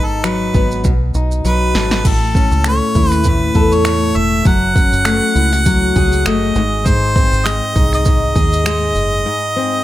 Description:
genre	acoustic pop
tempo	100 BPM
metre	4/4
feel	swing 55% on 16ths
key	unclear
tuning	A4 = 441 Hz
part	clear harmonica	melody	0.0-9.8 s	A4 to F#5	-18 LUFS	right 1 dB	none
part	fingerpicked steel-string acoustic guitar	accompaniment	0.0-9.8 s	G#2 to A4	-18 LUFS	left 3 dB	none
part	deep dub fingered electric bass	bass	0.0-9.2 s	E1 to E2	-18 LUFS	equal	none
part	deep house drum kit	drums	0.2-9.1 s	crash cymbal, finger snaps, kick drum, shaker, snare drum	-16 LUFS	right 1 dB	none
room	light reverb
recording	none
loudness	-12 LUFS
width	side -14 dB against mid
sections	0.0-2.0 A section; 2.0-9.8 B section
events	drum fill 0.8-2.0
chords	0.0 G#m7; 0.8 B7; 2.0 A; 4.5 F#madd9; 6.6 G#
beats	0.24 0.84 1.45 | 2.05 2.65 3.25 3.85 | 4.46 5.06 5.66 6.26 | 6.86 7.46 8.06 8.66 | 9.26

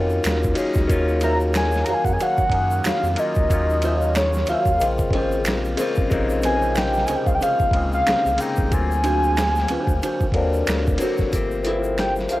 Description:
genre	R&B, neo-soul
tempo	92 BPM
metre	4/4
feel	swing 57% on 16ths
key	unclear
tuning	A4 = 440 Hz
part	barky tine electric piano	accompaniment	0.0-12.4 s	B#2 to G#4	-24 LUFS	left 2 dB	overdrive, phaser, cassette tape
part	round analog bass	bass	0.0-12.4 s	E#1 to F#2	-25 LUFS	equal	none
part	egg shaker and finger snaps	percussion	0.1-12.4 s	none	-34 LUFS	right 3 dB	none
part	dusty soul sampler-style drum kit	drums	0.2-12.4 s	finger snaps, hi-hat, kick drum, ride cymbal, snare drum	-25 LUFS	equal	overdrive
part	soft octave-layered synth lead	melody	1.2-12.4 s	C#5 to A#5	-22 LUFS	equal	chorus, cassette tape
part	electric guitar through a small old amp	second line	1.2-12.4 s	C#4 to E#5	-28 LUFS	right 3 dB	wide subtle chorus, cassette tape
room	light reverb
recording	home recording on cassette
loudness	-18 LUFS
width	side -17 dB against mid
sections	0.0-11.3 A section; 11.3-12.4 B section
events	none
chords	0.0 D#m9; 4.8 A#m9; 8.7 D7alt; 11.3 Gm11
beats	0.24 | 0.89 1.54 2.20 2.85 | 3.50 4.15 4.80 5.46 | 6.11 6.76 7.41 8.06 | 8.72 9.37 10.02 10.67 | 11.33 11.98

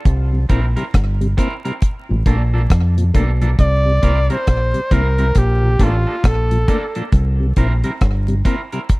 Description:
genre	roots reggae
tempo	68 BPM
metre	4/4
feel	swing 62% on 16ths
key	C mixolydian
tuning	A4 = 440 Hz
part	deep dub fingered electric bass	bass	0.1-8.4 s	G1 to F2	-16 LUFS	equal	none
part	deep reggae drum kit	drums	0.1-9.0 s	hi-hat, kick drum, rim click	-16 LUFS	equal	none
part	mellow tonewheel organ	accompaniment	0.3-8.8 s	Bb2 to E4	-22 LUFS	left 2 dB	overdrive, chorus vibrato, slow rotary speaker
part	electric guitar at the edge of break-up	accompaniment	0.5-8.8 s	Bb3 to Bb4	-28 LUFS	right 3 dB	spring reverb, tape echo
part	clear flugelhorn	melody	3.6-7.0 s	F4 to D5	-21 LUFS	equal	tape echo
room	little or no reverb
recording	dry, close 1970s-style studio recording, vinyl crackle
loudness	-14 LUFS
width	side -23 dB against mid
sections	0.0-9.0 A section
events	none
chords	0.1 C7; 1.8 Bbmaj7; 3.6 C7; 5.4 Bbmaj7; 7.1 C7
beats	| 0.05 0.94 1.82 2.70 | 3.59 4.47 5.36 6.24 | 7.12 8.01 8.89

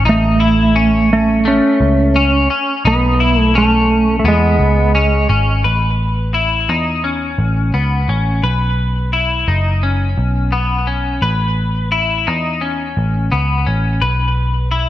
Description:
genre	dream pop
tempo	86 BPM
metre	4/4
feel	straight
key	A lydian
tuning	A4 = 440 Hz
part	clean electric guitar	arpeggios	0.0-14.9 s	A3 to B4	-18 LUFS	left 3 dB	analog chorus, digital delay
part	vintage muted picked electric bass	bass	0.0-14.9 s	F#1 to E2	-16 LUFS	equal	none
part	clean lap steel guitar	melody	0.1-5.3 s	G#3 to C#4	-14 LUFS	right 2 dB	digital delay
room	moderate recital hall reverb, RT60 1.8 s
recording	dark, warm production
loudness	-12 LUFS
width	side -13 dB against mid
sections	0.0-5.6 A section; 5.6-14.9 B section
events	none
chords	0.1 A; 2.9 Bsus4; 4.2 E; 5.6 Aadd9; 8.4 Bsus4; 11.2 Aadd9; 14.0 Bsus4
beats	| 0.06 0.76 1.46 2.15 | 2.85 3.55 4.25 4.94 | 5.64 6.34 7.04 7.74 | 8.43 9.13 9.83 10.53 | 11.22 11.92 12.62 13.32 | 14.01 14.71

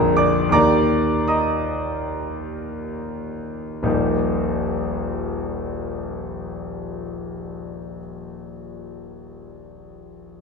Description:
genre	classical, romantic character piece for solo piano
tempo	free time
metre	none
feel	none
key	Eb major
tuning	A4 = 440 Hz
part	clear concert grand piano	solo	0.0-10.4 s	Bb0 to Eb6	-21 LUFS	equal	none
room	wet recital hall reverb, RT60 1.4 s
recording	minimal, uncompressed stereo recording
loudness	-20 LUFS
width	side -5 dB against mid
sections	0.0-3.8 A section; 3.8-10.4 B section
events	slowing down 0.0-3.8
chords	0.0 Bb7; 0.5 Eb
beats	free time

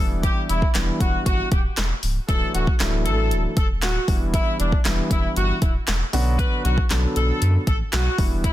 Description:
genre	dance-pop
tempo	117 BPM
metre	4/4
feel	straight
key	unclear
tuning	A4 = 439 Hz
part	warm horn section	melody	0.0-8.5 s	D4 to B4	-27 LUFS	left 1 dB	tape echo
part	dark baby grand piano	accompaniment	0.0-8.5 s	D3 to A4	-27 LUFS	equal	sidechain pumping
part	warm sub bass	bass	0.0-8.5 s	C#1 to F#2	-23 LUFS	equal	sidechain pumping
part	deep house drum kit	drums	0.2-8.5 s	handclaps, hi-hat, kick drum, snare drum	-22 LUFS	equal	none
room	little or no reverb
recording	dense, heavily limited modern master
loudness	-19 LUFS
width	side -14 dB against mid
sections	0.0-8.5 A section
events	none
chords	0.0 Em7; 2.3 Dadd9; 4.1 Em7; 6.1 Bm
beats	| 0.23 0.75 1.26 1.77 | 2.29 2.80 3.31 3.83 | 4.34 4.85 5.36 5.88 | 6.39 6.90 7.41 7.93 | 8.44

